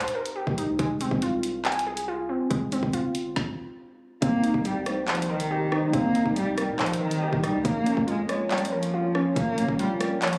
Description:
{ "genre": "hip hop, drill", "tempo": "140 BPM", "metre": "4/4", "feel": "half-time", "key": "C phrygian", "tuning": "A4 = 438 Hz", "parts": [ { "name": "warbly dusty pluck", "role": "accompaniment", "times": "0.0-10.4 s", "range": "Ab3 to Ab5", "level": "-30 LUFS", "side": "equal", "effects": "chorus, low-pass filter" }, { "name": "hard-hitting 808-style bass", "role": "bass", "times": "0.0-10.4 s", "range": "F1 to Db3", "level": "-38 LUFS", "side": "equal", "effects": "none" }, { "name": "drill drum kit", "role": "drums", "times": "0.0-10.4 s", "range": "handclaps, hi-hat, kick drum, rim click, snare drum", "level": "-33 LUFS", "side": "equal", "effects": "none" }, { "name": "dark cello", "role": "melody", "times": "4.2-10.4 s", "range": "Eb3 to Bb3", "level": "-29 LUFS", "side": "equal", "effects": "low-pass filter, digital delay" }, { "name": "mellow French horn section", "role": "sustained chords", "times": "4.2-10.4 s", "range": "C3 to Eb4", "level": "-36 LUFS", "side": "equal", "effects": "none" }, { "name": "hollow clarinet-like synth lead", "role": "second line", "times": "4.9-10.2 s", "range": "Bb4 to F5", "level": "-39 LUFS", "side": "equal", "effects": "chorus, digital delay" } ], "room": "light reverb, digital ambience", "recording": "recorded on a phone in the room, club reverb", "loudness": "-26 LUFS", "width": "mono", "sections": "0.0-4.2 A section; 4.2-10.4 B section", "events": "stop 3.4-4.2", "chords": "0.0 Cm7; 0.8 Fm; 4.2 Cm7; 7.6 Bbm", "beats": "0.36 | 0.79 1.22 1.65 2.08 | 2.51 2.94 3.36 3.79 | 4.22 4.65 5.08 5.51 | 5.93 6.36 6.79 7.22 | 7.65 8.08 8.51 8.94 | 9.36 9.79 10.22" }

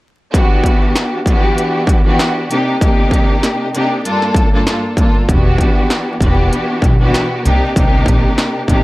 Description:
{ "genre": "hip hop, boom-bap hip-hop", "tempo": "97 BPM", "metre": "4/4", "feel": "swing 55% on 16ths", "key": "E minor", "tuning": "A4 = 440 Hz", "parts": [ { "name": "warm studio string section", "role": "accompaniment", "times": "0.3-8.8 s", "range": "G2 to A4", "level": "-15 LUFS", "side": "equal", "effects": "high-pass filter, low-pass filter" }, { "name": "industrial drum kit", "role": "drums", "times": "0.3-8.8 s", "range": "hi-hat, kick drum, snare drum", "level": "-13 LUFS", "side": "equal", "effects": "distortion, overdrive" }, { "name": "upright bass", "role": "bass", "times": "5.3-8.8 s", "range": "E1 to C2", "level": "-15 LUFS", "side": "equal", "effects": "none" } ], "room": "light reverb", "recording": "vinyl crackle", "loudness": "-11 LUFS", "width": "side -19 dB against mid", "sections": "0.3-8.8 A section", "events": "none", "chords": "0.3 Em9; 2.5 Cm9; 4.0 Gm9; 5.3 Em9; 7.5 Cm9", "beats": "| 0.34 0.96 1.58 2.19 | 2.81 3.43 4.05 4.67 | 5.29 5.91 6.52 7.14 | 7.76 8.38" }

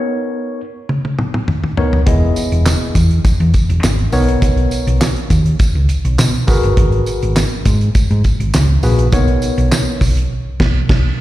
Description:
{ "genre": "early-eighties boogie funk", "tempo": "102 BPM", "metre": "4/4", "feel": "straight", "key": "B major", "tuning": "A4 = 440 Hz", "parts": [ { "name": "tine electric piano", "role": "accompaniment", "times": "0.0-10.0 s", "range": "A#3 to D#5", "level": "-19 LUFS", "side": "left 1 dB", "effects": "medium stereo tremolo, slapback echo" }, { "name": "damped 70s drum kit", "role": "drums", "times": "0.9-11.1 s", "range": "crash cymbal, handclaps, hi-hat, kick drum, snare drum, toms", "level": "-15 LUFS", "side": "equal", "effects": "none" }, { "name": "hollow-body short-scale fingered electric bass", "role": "bass", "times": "2.1-11.1 s", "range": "E1 to B2", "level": "-14 LUFS", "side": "equal", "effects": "none" }, { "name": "tambourine", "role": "percussion", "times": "2.4-10.2 s", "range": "none", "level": "-28 LUFS", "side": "right 2 dB", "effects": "none" } ], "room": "studio ambience", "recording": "live gig heard through the venue's PA, recital hall reverb", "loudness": "-12 LUFS", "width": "side -15 dB against mid", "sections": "0.0-11.2 A section", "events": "drum fill 0.9-2.1; band accent 10.3-11.2", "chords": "0.0 Bmaj9; 2.1 Emaj7; 4.1 Bmaj9; 6.5 G#m9; 9.1 Bmaj9", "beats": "0.30 0.89 1.48 | 2.07 2.66 3.25 3.83 | 4.42 5.01 5.60 6.19 | 6.77 7.36 7.95 8.54 | 9.13 9.72 10.30 10.89" }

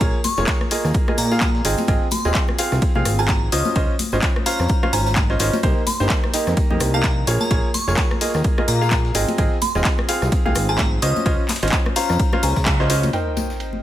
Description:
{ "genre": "piano house", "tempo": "128 BPM", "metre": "4/4", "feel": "swing 57% on 16ths", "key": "unclear", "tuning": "A4 = 439 Hz", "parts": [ { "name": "glassy synth bell", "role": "melody", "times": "0.0-12.6 s", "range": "Bb5 to Eb6", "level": "-28 LUFS", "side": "left 1 dB", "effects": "chorus, phaser, ping-pong delay" }, { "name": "bright baby grand piano", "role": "riff", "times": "0.0-13.8 s", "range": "Bb3 to Ab5", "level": "-23 LUFS", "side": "right 1 dB", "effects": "sidechain pumping" }, { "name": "fat analog bass", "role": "bass", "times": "0.0-13.1 s", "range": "Eb1 to Bb2", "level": "-21 LUFS", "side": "equal", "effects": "sidechain pumping" }, { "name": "breakbeat sampler-style drum kit", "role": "drums", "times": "0.0-13.7 s", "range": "hi-hat, ride cymbal, snare drum", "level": "-35 LUFS", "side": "right 3 dB", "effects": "sidechain pumping on cymbals, high-pass filter on cymbals, low-pass filter on cymbals, high-pass filter on snare, low-pass filter on snare, sidechain pumping on hats, high-pass filter on hats, low-pass filter on hats" }, { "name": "electronic kick drum", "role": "drums", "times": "0.0-12.8 s", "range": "none", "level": "-20 LUFS", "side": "equal", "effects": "overdrive" }, { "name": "tambourine and congas", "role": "percussion", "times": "0.0-13.8 s", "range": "none", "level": "-30 LUFS", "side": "left 4 dB", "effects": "none" }, { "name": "punchy analog drum machine", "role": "drums", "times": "0.2-13.0 s", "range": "handclaps, hi-hat, rim click", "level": "-25 LUFS", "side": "left 1 dB", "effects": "overdrive" }, { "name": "sub drop", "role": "sound effects", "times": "13.1-13.8 s", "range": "none", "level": "-27 LUFS", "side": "equal", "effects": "none" }, { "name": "deep dark ambient pad", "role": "texture", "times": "13.6-13.8 s", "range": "C5 to G5", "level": "-39 LUFS", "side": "right 4 dB", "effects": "chorus, built-in reverb, sidechain pumping" } ], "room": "little or no reverb", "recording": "none", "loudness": "-17 LUFS", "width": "side -13 dB against mid", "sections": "0.0-13.1 A section", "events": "band accent 12.7; impact 13.1-13.8", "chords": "0.0 Bbm7; 1.6 Ab6; 3.5 Dbmaj9; 5.6 Cm7; 7.3 Bbm7; 9.1 Ab6; 11.0 Dbmaj9; 13.1 Cm7", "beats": "| 0.01 0.48 0.94 1.41 | 1.88 2.35 2.82 3.29 | 3.76 4.23 4.70 5.16 | 5.63 6.10 6.57 7.04 | 7.51 7.98 8.45 8.91 | 9.38 9.85 10.32 10.79 | 11.26 11.73 12.20 12.66 | 13.13 13.60" }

